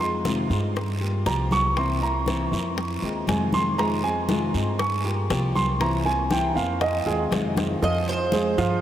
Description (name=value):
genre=latin, Cuban son and guajira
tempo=119 BPM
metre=4/4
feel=straight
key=F minor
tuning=A4 = 443 Hz
part: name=nylon-string guitar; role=accompaniment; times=0.0-7.8 s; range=C3 to G4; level=-28 LUFS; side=left 2 dB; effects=none
part: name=dark baby grand piano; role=arpeggios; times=0.0-8.8 s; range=F3 to Db6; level=-26 LUFS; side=right 3 dB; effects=none
part: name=upright bass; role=bass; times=0.0-8.8 s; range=C2 to G2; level=-27 LUFS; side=equal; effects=none
part: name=bongos and cowbell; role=percussion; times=0.0-8.8 s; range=none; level=-34 LUFS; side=left 5 dB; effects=none
part: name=congas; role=percussion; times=0.0-8.8 s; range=none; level=-32 LUFS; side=left 1 dB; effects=none
part: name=guiro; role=percussion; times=0.3-8.8 s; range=none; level=-38 LUFS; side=right 4 dB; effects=none
part: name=Cuban tres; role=melody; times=7.8-8.8 s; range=C5 to Eb5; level=-25 LUFS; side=right 2 dB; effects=none
room=wet huge ambient reverb, RT60 7.6 s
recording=dreamy mix soaked in reverb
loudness=-21 LUFS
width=side -11 dB against mid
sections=0.0-7.8 A section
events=grand piano solo 0.0-7.8; drum fill 7.6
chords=0.0 Fm7; 0.8 Bbm69; 1.8 C7; 2.8 Fm7; 4.8 Gm7b5; 5.8 C7; 6.8 Fm7; 7.8 Fm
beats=0.25 0.76 1.26 | 1.77 2.27 2.78 3.28 | 3.79 4.29 4.80 5.30 | 5.81 6.31 6.82 7.32 | 7.83 8.33